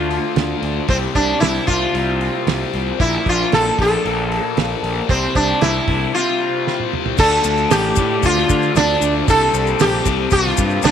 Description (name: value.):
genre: psychedelic rock.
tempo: 114 BPM.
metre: 4/4.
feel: straight.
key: D minor.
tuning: A4 = 439 Hz.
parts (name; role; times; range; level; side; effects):
sitar; melody; 0.0-10.9 s; C4 to A4; -18 LUFS; equal; tape echo.
mellow tonewheel organ; sustained chords; 0.0-10.9 s; Bb3 to G5; -31 LUFS; right 11 dB; slow rotary speaker.
fuzz guitar; riff; 0.0-10.9 s; Bb2 to D4; -23 LUFS; left 14 dB; distortion, phaser.
fuzz picked electric bass; bass; 0.0-10.9 s; A1 to D3; -22 LUFS; equal; overdrive.
damped 70s drum kit; drums; 0.1-10.9 s; crash cymbal, hi-hat, kick drum, snare drum, toms; -20 LUFS; right 4 dB; none.
maracas; percussion; 7.2-10.9 s; none; -28 LUFS; left 18 dB; none.
room: moderate plate reverb, RT60 1.6 s, small room reverb.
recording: 1960s-style stereo with parts hard left and right.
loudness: -15 LUFS.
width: side -8 dB against mid.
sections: 0.0-7.2 A section; 7.2-10.9 B section.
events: break 6.1-7.2; drum fill 6.7-7.2.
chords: 0.0 Dm7; 0.9 C7sus4; 3.0 Bb; 5.1 C7sus4; 7.2 Dm7; 9.3 C7sus4.